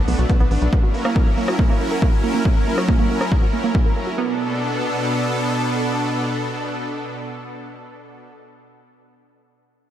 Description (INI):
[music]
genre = uplifting trance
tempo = 139 BPM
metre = 4/4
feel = straight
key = B minor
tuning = A4 = 440 Hz
[part]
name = supersaw pad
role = sustained chords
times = 0.0-8.3 s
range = B2 to A#4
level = -23 LUFS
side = equal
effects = lush chorus, sidechain pumping
[part]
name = analog pluck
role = arpeggios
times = 0.0-4.4 s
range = A#3 to B4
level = -25 LUFS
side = right 5 dB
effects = chorus, sidechain pumping, analog delay
[part]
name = tight sequencer bass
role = bass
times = 0.0-0.7 s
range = A1 to B1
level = -19 LUFS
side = equal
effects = sidechain pumping
[part]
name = big-room dance drum kit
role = drums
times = 0.1-4.2 s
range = hi-hat, rim click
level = -32 LUFS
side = left 1 dB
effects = none
[part]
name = electronic kick drum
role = drums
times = 0.3-3.8 s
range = none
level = -17 LUFS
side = equal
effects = none
[sound]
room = moderate huge ambient reverb, RT60 3.9 s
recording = dreamy mix soaked in reverb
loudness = -17 LUFS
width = side -11 dB against mid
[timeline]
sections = 0.0-4.2 A section; 4.2-7.6 B section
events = filter sweep on synth arpeggio sound 0.0-4.2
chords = 0.0 Bm7; 0.7 F#7; 4.2 Bm7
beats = 0.29 | 0.73 1.16 1.59 2.02 | 2.45 2.88 3.32 3.75 | 4.18 4.61 5.04 5.47 | 5.91 6.34 6.77 7.20